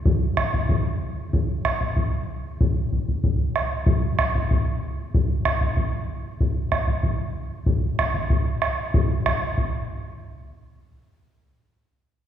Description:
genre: andean folk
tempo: 95 BPM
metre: 2/4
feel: straight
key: none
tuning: none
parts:
  - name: bombo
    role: percussion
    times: 0.1-9.9 s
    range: none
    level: -21 LUFS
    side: equal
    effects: none
room: wet scoring stage reverb, RT60 2.0 s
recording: heard from further back in the room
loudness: -21 LUFS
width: side -9 dB against mid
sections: 0.0-9.6 A section; 9.6-10.8 B section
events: none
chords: none

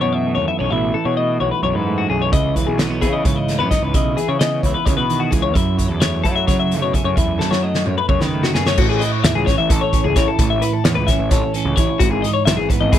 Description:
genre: math rock and midwest emo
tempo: 260 BPM (eighths)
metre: 7/8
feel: straight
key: unclear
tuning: A4 = 440 Hz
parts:
  - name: semi-hollow electric guitar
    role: accompaniment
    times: 0.0-13.0 s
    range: F#2 to A4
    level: -22 LUFS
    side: right 6 dB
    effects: none
  - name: twelve-string electric guitar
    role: arpeggios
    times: 0.0-13.0 s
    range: F#4 to E5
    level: -21 LUFS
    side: left 9 dB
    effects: none
  - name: fuzz picked electric bass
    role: bass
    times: 0.0-13.0 s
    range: G#1 to F#3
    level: -22 LUFS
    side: equal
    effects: overdrive
  - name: loose indie drum kit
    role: drums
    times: 2.3-13.0 s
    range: crash cymbal, hi-hat, kick drum, snare drum, toms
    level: -19 LUFS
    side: equal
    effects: none
room: little or no reverb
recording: none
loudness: -15 LUFS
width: side -11 dB against mid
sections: 0.0-8.8 A section; 8.8-13.0 B section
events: drum fill 7.4-8.8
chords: 0.0 B9sus4; 2.3 C#m9; 5.5 F#m7; 8.8 A; 12.0 Emaj7/G#

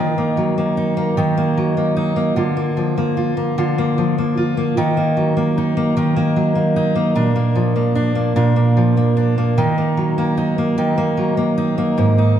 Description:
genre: pop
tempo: 50 BPM (dotted quarters)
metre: 6/8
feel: straight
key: Eb harmonic minor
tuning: A4 = 443 Hz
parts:
  - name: fingerpicked steel-string acoustic guitar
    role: solo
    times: 0.0-12.4 s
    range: Ab2 to Bb4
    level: -15 LUFS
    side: equal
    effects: digital delay
room: moderate concert hall reverb, RT60 1.8 s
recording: small room ambience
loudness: -15 LUFS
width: side -10 dB against mid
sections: 0.0-12.4 A section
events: none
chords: 0.0 Ebm; 2.4 Bb/D; 4.8 Ebm; 7.2 Bb; 9.6 Ebm

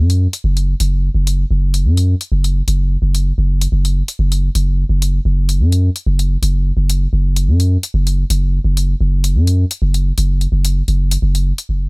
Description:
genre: minimal techno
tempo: 128 BPM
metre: 4/4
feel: swing 54% on 16ths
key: unclear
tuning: A4 = 436 Hz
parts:
  - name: punchy sub bass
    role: bass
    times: 0.0-11.9 s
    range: F#1 to F#2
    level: -13 LUFS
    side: equal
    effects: none
  - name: electronic hi-hat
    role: drums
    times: 0.1-11.7 s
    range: none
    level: -23 LUFS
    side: left 3 dB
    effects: none
room: little or no reverb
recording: none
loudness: -13 LUFS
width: side -34 dB against mid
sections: 0.0-11.7 A section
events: none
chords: none

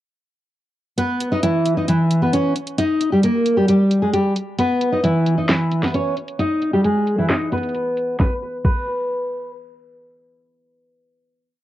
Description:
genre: hip hop, trap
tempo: 133 BPM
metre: 4/4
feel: half-time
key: G# harmonic minor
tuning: A4 = 440 Hz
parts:
  - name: nylon-string guitar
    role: melody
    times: 1.0-9.5 s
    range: E3 to D#5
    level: -17 LUFS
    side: equal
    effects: cassette tape, analog delay
  - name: trap drum kit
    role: drums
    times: 1.0-8.8 s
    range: crash cymbal, handclaps, hi-hat, kick drum, snare drum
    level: -22 LUFS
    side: equal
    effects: cassette tape
room: moderate small room reverb, RT60 0.5 s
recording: home recording on cassette, low-pass filter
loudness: -17 LUFS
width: side -14 dB against mid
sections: 1.0-8.2 breakdown; 8.2-11.6 final note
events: none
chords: 1.0 E5; 2.8 D#; 4.6 C#m7; 6.4 G#m; 8.2 N.C.

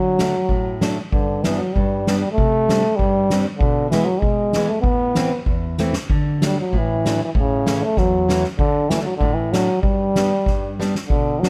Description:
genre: alpine folk, alpine dance band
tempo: 96 BPM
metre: 2/4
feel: straight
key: G major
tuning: A4 = 440 Hz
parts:
  - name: warm euphonium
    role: melody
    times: 0.0-11.5 s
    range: C#3 to B3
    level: -22 LUFS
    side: equal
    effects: plate reverb
  - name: fingerpicked plugged-in steel-string acoustic guitar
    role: accompaniment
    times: 0.0-11.5 s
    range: E2 to D4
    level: -25 LUFS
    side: equal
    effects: none
  - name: soft-mallet drum kit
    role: drums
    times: 0.2-11.5 s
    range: hi-hat, kick drum, snare drum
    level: -25 LUFS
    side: equal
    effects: none
room: light reverb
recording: dark, warm production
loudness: -19 LUFS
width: mono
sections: 0.0-11.1 A section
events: drum fill 5.8-6.1, 10.8-11.1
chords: 0.0 D; 1.1 G; 2.4 Csus2; 3.6 E/B; 4.8 Amadd9; 6.1 D; 7.4 A; 8.6 D; 9.8 G

